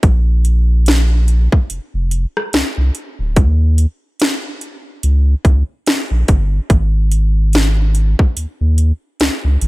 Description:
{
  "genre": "contemporary R&B",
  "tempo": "72 BPM",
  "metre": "4/4",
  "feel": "swing 58% on 16ths",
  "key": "unclear",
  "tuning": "A4 = 440 Hz",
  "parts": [
    { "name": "warm sub bass", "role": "bass", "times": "0.0-9.7 s", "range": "D1 to Eb2", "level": "-13 LUFS", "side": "equal", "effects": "none" },
    { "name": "trap drum kit", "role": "drums", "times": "0.0-9.7 s", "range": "hi-hat, kick drum, rim click, snare drum", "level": "-15 LUFS", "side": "equal", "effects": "overdrive" }
  ],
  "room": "little or no reverb",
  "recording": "none",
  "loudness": "-13 LUFS",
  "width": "side -20 dB against mid",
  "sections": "0.0-9.7 A section",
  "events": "none",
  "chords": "none"
}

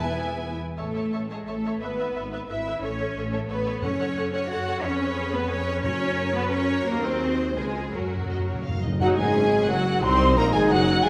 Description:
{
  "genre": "classical, dramatic, fast romantic movement for symphony orchestra",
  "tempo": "176 BPM",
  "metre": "3/4",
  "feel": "rubato",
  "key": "A major, F# major from 4.8 s",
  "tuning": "A4 = 440 Hz",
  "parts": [
    { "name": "rich studio violin section", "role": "melody", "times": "0.0-11.1 s", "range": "B4 to B#5", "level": "-35 LUFS", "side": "equal", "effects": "none" },
    { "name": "rich symphonic violin section", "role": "second line", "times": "0.0-11.1 s", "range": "F#4 to F#5", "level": "-33 LUFS", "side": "equal", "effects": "none" },
    { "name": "rich symphonic viola section", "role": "accompaniment", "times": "0.0-11.1 s", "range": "F#3 to E5", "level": "-35 LUFS", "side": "equal", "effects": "none" },
    { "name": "rich symphonic cello section", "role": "bass", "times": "0.0-11.1 s", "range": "F#3 to F#4", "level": "-32 LUFS", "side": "equal", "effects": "none" },
    { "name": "rich symphonic double bass section", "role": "bass", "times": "0.0-11.1 s", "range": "E#1 to F#2", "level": "-33 LUFS", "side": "equal", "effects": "none" },
    { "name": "timpani", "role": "percussion", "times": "0.0-0.2, 3.8-9.5 s", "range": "E2 to F#2", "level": "-35 LUFS", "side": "equal", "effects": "none" },
    { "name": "mellow hollow concert flute", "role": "second line", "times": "9.0-11.1 s", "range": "F#5 to B#5", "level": "-29 LUFS", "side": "equal", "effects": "none" },
    { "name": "mellow French horn section", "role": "sustained chords", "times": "9.0-11.1 s", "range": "F#3 to B#3", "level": "-29 LUFS", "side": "equal", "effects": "none" },
    { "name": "mellow trombone section", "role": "sustained chords", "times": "9.0-11.1 s", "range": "F#3 to B#3", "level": "-31 LUFS", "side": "equal", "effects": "none" },
    { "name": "mellow tuba", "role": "bass", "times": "9.0-11.1 s", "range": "E#1 to B#1", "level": "-30 LUFS", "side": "equal", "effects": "none" }
  ],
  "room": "wet stone room reverb, RT60 1.3 s",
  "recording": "none",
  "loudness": "-25 LUFS",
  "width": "mono",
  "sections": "0.8-9.0 A section; 9.0-11.1 B section",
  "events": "timpani fill 7.9-9.0",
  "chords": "0.0 E; 0.8 A; 1.8 E/G#; 2.8 A; 3.8 F#m; 4.8 C#7/E#; 5.8 F#; 6.9 D#m; 7.2 G#7/D#; 7.6 C#7; 7.9 F#; 9.0 F#5; 10.0 G#7"
}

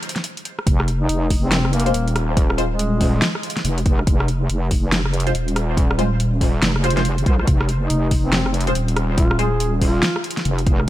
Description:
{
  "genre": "deep dubstep",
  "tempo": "141 BPM",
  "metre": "4/4",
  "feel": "swing 62% on 16ths, half-time",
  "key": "F minor",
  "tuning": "A4 = 441 Hz",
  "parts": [
    { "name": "deep house drum kit", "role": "drums", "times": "0.0-10.9 s", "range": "hi-hat, rim click, snare drum", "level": "-24 LUFS", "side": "equal", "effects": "none" },
    { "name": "wobble bass", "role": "bass", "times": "0.7-10.9 s", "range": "Eb1 to C2", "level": "-20 LUFS", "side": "equal", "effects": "chorus" },
    { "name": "electronic kick drum", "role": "drums", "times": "0.7-10.8 s", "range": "none", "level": "-18 LUFS", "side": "equal", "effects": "none" },
    { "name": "mellow duduk", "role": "melody", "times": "1.0-3.3, 7.8-10.2 s", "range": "Ab3 to Ab4", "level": "-25 LUFS", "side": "left 1 dB", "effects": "dub echo" },
    { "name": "filtered dub chord stab", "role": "stabs", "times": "1.9-2.7, 5.3-9.5 s", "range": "Ab3 to C5", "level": "-26 LUFS", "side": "left 1 dB", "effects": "phaser, lush chorus, cassette tape, dub echo" }
  ],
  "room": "digital ambience",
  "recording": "none",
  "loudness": "-17 LUFS",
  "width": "side -14 dB against mid",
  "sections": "0.0-10.9 A section",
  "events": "break 0.0-0.7",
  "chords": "none"
}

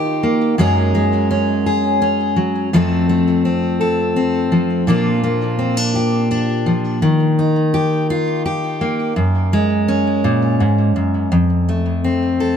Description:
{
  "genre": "folk",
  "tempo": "56 BPM (dotted quarters)",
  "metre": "6/8",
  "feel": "straight",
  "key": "unclear",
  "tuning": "A4 = 440 Hz",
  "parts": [
    { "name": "fingerpicked steel-string acoustic guitar", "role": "solo", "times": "0.0-12.6 s", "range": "F2 to A4", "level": "-14 LUFS", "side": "equal", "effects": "digital delay" }
  ],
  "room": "light reverb",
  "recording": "dark, warm production",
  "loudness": "-14 LUFS",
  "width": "side -8 dB against mid",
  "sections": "0.0-12.6 A section",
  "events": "none",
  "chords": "0.0 Eb; 0.6 Gbsus2; 2.7 F; 4.9 Bb; 7.0 Eb; 9.2 Gbadd9; 11.3 F"
}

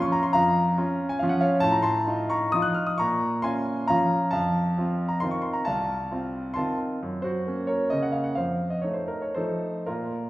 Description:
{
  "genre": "classical, piano waltz",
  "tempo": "107-147 BPM",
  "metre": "3/4",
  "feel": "rubato",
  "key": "unclear",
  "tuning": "A4 = 440 Hz",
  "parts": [
    { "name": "bright concert grand piano", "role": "solo", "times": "0.0-10.3 s", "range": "C2 to Gb6", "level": "-23 LUFS", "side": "equal", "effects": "none" }
  ],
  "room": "wet recital hall reverb, RT60 1.7 s",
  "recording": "heard from further back in the room",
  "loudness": "-23 LUFS",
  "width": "side -16 dB against mid",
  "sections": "0.0-10.3 A section",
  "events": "none",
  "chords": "0.0 Bbm; 1.6 F7/A; 3.0 Bbm; 4.3 F7; 7.0 Gb; 8.4 F7"
}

